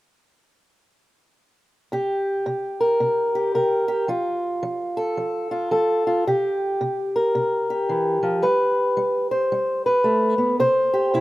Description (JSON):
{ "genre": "blues", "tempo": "111 BPM", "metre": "4/4", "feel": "swing 62% on 8ths", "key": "unclear", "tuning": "A4 = 440 Hz", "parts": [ { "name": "fingerpicked acoustic archtop guitar", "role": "solo", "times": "1.9-11.2 s", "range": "C3 to C5", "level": "-19 LUFS", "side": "equal", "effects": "none" } ], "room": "light reverb, small room ambience", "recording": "rough home demo mix", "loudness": "-19 LUFS", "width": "side -17 dB against mid", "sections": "1.9-10.6 A section", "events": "none", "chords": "1.9 C5; 4.1 F; 6.3 C7; 8.4 G; 10.6 C5" }